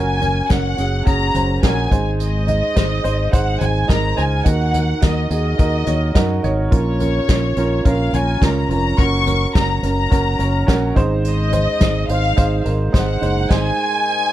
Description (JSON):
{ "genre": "piano-driven pop", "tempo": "106 BPM", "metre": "4/4", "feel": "straight", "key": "unclear", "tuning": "A4 = 440 Hz", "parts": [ { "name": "dark studio violin section", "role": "melody", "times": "0.0-14.3 s", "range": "Db5 to Db6", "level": "-22 LUFS", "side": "left 2 dB", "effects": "none" }, { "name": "dark baby grand piano", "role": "accompaniment", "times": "0.0-14.3 s", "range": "Ab2 to Eb5", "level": "-21 LUFS", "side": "right 3 dB", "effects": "none" }, { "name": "fingered electric bass", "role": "bass", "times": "0.0-13.7 s", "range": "F1 to Gb2", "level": "-20 LUFS", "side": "equal", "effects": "none" }, { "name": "unplugged drum kit", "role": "drums", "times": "0.2-13.7 s", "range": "crash cymbal, hi-hat, kick drum, snare drum, toms", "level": "-18 LUFS", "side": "equal", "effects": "none" } ], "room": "little or no reverb", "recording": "none", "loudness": "-15 LUFS", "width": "side -13 dB against mid", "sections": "0.0-14.3 A section", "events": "band accent 13.5-14.3", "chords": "0.0 Gb; 1.9 Ab; 4.5 Ebm; 6.7 Bbm; 9.0 Gb; 11.0 Ab" }